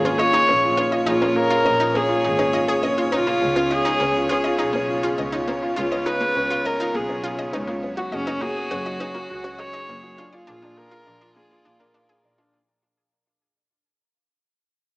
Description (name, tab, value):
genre	piano and strings electronica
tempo	102 BPM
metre	4/4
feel	straight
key	unclear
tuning	A4 = 440 Hz
part	warm viola	melody	0.0-11.9 s	Db4 to Db5	-22 LUFS	equal	none
part	rich string quartet	sustained chords	0.0-12.5 s	Bb2 to D5	-29 LUFS	equal	none
part	dark upright piano	riff	0.0-12.6 s	Db4 to F5	-24 LUFS	equal	none
part	warm studio double bass section	bass	0.0-12.5 s	Gb1 to Db2	-34 LUFS	equal	none
part	analog pluck	arpeggios	0.1-12.5 s	Bb3 to Eb5	-30 LUFS	equal	chorus, tape echo
room	moderate echo chamber reverb, RT60 2.1 s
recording	small speaker sound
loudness	-19 LUFS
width	side -23 dB against mid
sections	0.0-12.5 A section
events	drop 0.0-12.5; fade-out 3.1-12.5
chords	0.0 Bbm7; 3.1 Db7; 7.8 Gbsus2; 10.2 Bb7